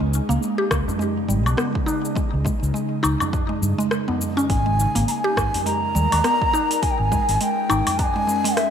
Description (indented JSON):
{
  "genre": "organic downtempo",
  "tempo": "103 BPM",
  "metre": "4/4",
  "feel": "swing 59% on 16ths",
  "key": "unclear",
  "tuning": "A4 = 441 Hz",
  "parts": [
    { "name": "ethereal airy pad", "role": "sustained chords", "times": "0.0-8.7 s", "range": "C#3 to A#4", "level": "-28 LUFS", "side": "right 1 dB", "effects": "ensemble chorus, built-in reverb, sidechain pumping, shimmer reverb" },
    { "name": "mallet-like synth pluck", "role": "arpeggios", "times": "0.0-8.5 s", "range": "G3 to G4", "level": "-25 LUFS", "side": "equal", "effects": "chorus, ping-pong delay, shimmer reverb" },
    { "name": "fretless electric bass", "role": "bass", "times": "0.0-7.8 s", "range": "G#1 to G2", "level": "-22 LUFS", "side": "equal", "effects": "sidechain pumping" },
    { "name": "deep house drum kit", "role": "drums", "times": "0.1-8.7 s", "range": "cabasa, hi-hat, rim click, woodblock", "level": "-27 LUFS", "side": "left 1 dB", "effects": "overdrive" },
    { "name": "electronic kick drum", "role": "drums", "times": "0.7-8.1 s", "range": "none", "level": "-25 LUFS", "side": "equal", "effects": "overdrive" },
    { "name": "tabla", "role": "percussion", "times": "0.9-8.1 s", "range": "none", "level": "-32 LUFS", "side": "right 1 dB", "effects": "none" },
    { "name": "breathy bass bansuri", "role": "melody", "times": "4.5-8.7 s", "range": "E5 to A#5", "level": "-22 LUFS", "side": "equal", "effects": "ping-pong delay, shimmer reverb" }
  ],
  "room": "moderate plate reverb, RT60 2.1 s",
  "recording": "bright 1980s-style digital production",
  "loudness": "-19 LUFS",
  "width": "side -8 dB against mid",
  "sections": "0.0-8.7 A section",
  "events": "none",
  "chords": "0.0 G#sus2",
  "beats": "0.42 1.00 1.58 | 2.17 2.75 3.33 3.91 | 4.50 5.08 5.66 6.24 | 6.83 7.41 7.99 8.57"
}